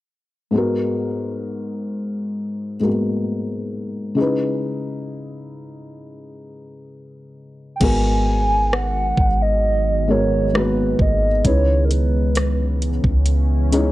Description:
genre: contemporary R&B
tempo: 66 BPM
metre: 4/4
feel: straight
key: G# minor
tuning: A4 = 440 Hz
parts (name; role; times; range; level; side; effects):
- felt-muted upright piano; accompaniment; 0.5-13.9 s; G#2 to C#5; -22 LUFS; left 2 dB; none
- hollow clarinet-like synth lead; melody; 7.8-12.8 s; A#4 to G#5; -22 LUFS; right 2 dB; chorus, tape echo
- deep dark ambient pad; sustained chords; 8.6-13.9 s; C#3 to G#4; -27 LUFS; right 1 dB; chorus, built-in reverb, sidechain pumping
- soft 808-style bass; bass; 7.8-13.9 s; G#1 to C#2; -19 LUFS; equal; none
- smooth R&B drum kit; drums; 7.8-13.9 s; crash cymbal, hi-hat, kick drum, rim click; -21 LUFS; equal; vintage 12-bit sampler grit
room: digital ambience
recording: dry, gritty hardware recording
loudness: -17 LUFS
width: side -16 dB against mid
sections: 0.5-7.8 A section; 7.8-13.9 B section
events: none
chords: 0.5 G#m7; 4.2 C#m7; 7.8 G#m7; 11.4 C#m7

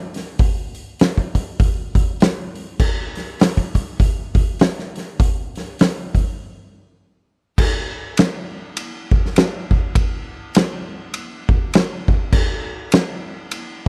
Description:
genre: metal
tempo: 101 BPM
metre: 4/4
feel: swing 59% on 8ths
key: none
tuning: none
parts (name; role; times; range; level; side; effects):
- oversized low-tuned drum kit; drums; 0.1-13.7 s; crash cymbal, hi-hat, kick drum, ride cymbal, snare drum; -19 LUFS; equal; none
room: little or no reverb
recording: dry, close 1970s-style studio recording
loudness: -19 LUFS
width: mono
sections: 0.0-7.6 A section; 7.6-13.9 B section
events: break 6.4-7.6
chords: none

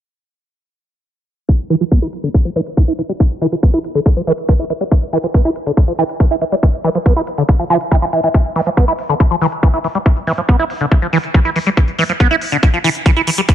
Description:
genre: psychedelic trance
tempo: 140 BPM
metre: 4/4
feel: straight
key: E phrygian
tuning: A4 = 436 Hz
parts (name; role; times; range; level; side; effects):
- liquid acid bass; riff; 1.5-13.5 s; D3 to E4; -16 LUFS; right 1 dB; phaser, auto-pan, sidechain pumping, tape echo
- electronic hi-hat; drums; 1.5-13.5 s; none; -30 LUFS; left 2 dB; small room ambience
- electronic kick drum; drums; 1.5-13.5 s; none; -11 LUFS; equal; small room ambience
room: light reverb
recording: low-pass filter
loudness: -12 LUFS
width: side -11 dB against mid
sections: 1.5-13.5 A section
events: filter sweep on acid bass 1.5-13.5; filter sweep 1.5-13.5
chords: none

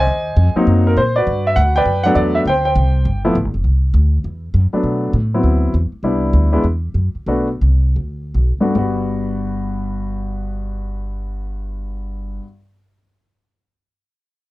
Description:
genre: jazz piano trio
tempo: 141-202 BPM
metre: 4/4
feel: swing 63% on 8ths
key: G major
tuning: A4 = 441 Hz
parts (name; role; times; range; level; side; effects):
- warm grand piano; melody; 0.0-12.4 s; G2 to Ab5; -18 LUFS; left 1 dB; none
- upright bass; bass; 0.0-12.4 s; F1 to B2; -17 LUFS; equal; none
room: little or no reverb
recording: dry, close 1970s-style studio recording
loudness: -14 LUFS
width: side -18 dB against mid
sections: 0.0-3.7 A section; 3.7-8.8 B section; 8.8-12.2 C section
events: slowing down 6.0-8.8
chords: 0.1 Ab9; 1.3 Gmaj7; 2.5 Csus2; 3.1 G7sus2; 3.7 Csus2; 4.2 Esus2; 4.8 Bm7; 5.4 D13; 6.0 Cmaj7; 6.6 Esus2; 7.3 Bm7; 8.0 D5; 8.8 Gmaj7

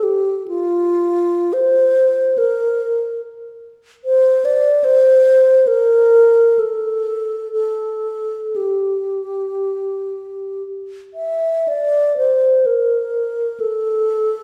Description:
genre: classical, free, expressive piece for unaccompanied alto flute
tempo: 53-74 BPM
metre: 4/4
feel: rubato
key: unclear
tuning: A4 = 438 Hz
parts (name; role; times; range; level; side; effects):
- wooden-headed alto flute; solo; 0.0-14.4 s; F4 to E5; -17 LUFS; equal; none
room: wet recital hall reverb, RT60 1.7 s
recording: heard from further back in the room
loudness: -16 LUFS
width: mono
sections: 0.0-14.4 A section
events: none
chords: none

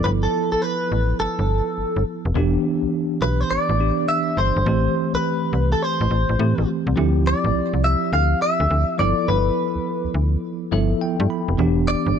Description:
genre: R&B, new jack swing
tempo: 104 BPM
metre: 4/4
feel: swing 65% on 16ths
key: D dorian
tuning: A4 = 440 Hz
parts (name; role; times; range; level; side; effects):
- direct-recorded clean electric guitar; melody; 0.0-12.2 s; A4 to F5; -22 LUFS; left 1 dB; lush chorus
- bell-like tine electric piano; accompaniment; 0.0-12.2 s; E3 to B5; -23 LUFS; right 1 dB; medium stereo tremolo
- slap-like FM bass; bass; 0.0-12.2 s; E1 to A2; -20 LUFS; equal; none
room: light reverb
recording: dark, warm production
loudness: -18 LUFS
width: side -8 dB against mid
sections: 0.0-7.0 A section; 7.0-12.2 B section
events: tine electric piano fill 10.4-11.6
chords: 0.0 G13; 2.3 Em7; 4.7 Am7; 7.0 Dm11; 9.0 G13; 11.6 Em7

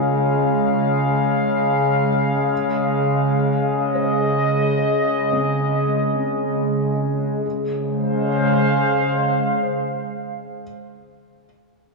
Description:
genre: ambient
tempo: free time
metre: none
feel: none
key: Db major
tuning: A4 = 442 Hz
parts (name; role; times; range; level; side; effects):
- warbly tape-like pad; sustained chords; 0.0-10.7 s; Db3 to F5; -18 LUFS; equal; chorus, built-in reverb
- felt-muted upright piano; arpeggios; 0.0-11.9 s; C4 to C5; -35 LUFS; left 2 dB; none
room: wet spring reverb, RT60 2.4 s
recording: echo-heavy mix, cassette tape, small room ambience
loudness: -18 LUFS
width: side -2 dB against mid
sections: 0.0-7.5 A section; 7.5-9.9 B section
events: none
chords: 0.0 Dbmaj7; 2.5 Ab/Db; 7.5 Dbmaj7

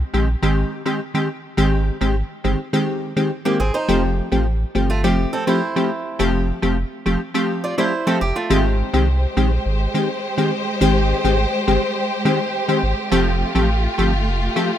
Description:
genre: dancehall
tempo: 104 BPM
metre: 4/4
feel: straight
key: unclear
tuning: A4 = 440 Hz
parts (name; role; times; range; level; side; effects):
- warm sub bass; bass; 0.0-14.5 s; E1 to C2; -20 LUFS; equal; none
- wavetable chord stab; accompaniment; 0.1-14.7 s; Eb3 to G4; -20 LUFS; left 1 dB; none
- fingerpicked swing-style acoustic guitar; arpeggios; 3.5-8.6 s; A3 to D5; -24 LUFS; right 3 dB; none
- warm studio string section; sustained chords; 8.5-14.8 s; Ab3 to C5; -22 LUFS; equal; none
room: light reverb, small room ambience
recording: rough home demo mix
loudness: -17 LUFS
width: side -10 dB against mid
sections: 0.0-8.5 A section; 8.5-14.8 B section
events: none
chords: 0.0 Abmaj7; 3.9 Fadd9; 8.5 Abmaj7; 13.1 Fadd9

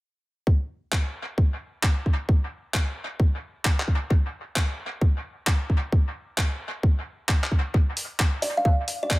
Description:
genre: UK garage, two-step garage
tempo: 132 BPM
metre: 4/4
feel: swing 66% on 16ths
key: unclear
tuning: A4 = 440 Hz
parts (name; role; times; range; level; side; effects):
- electronic kick drum; drums; 0.5-9.2 s; none; -21 LUFS; equal; small room reverb
- breakbeat sampler-style drum kit; drums; 0.9-9.2 s; handclaps, hi-hat; -28 LUFS; equal; small room reverb, dub echo
- kalimba; melody; 8.4-9.2 s; D5 to F5; -25 LUFS; equal; dub echo
room: light reverb, digital ambience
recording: echo-heavy mix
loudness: -22 LUFS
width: side -21 dB against mid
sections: 0.5-9.2 A section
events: none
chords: none

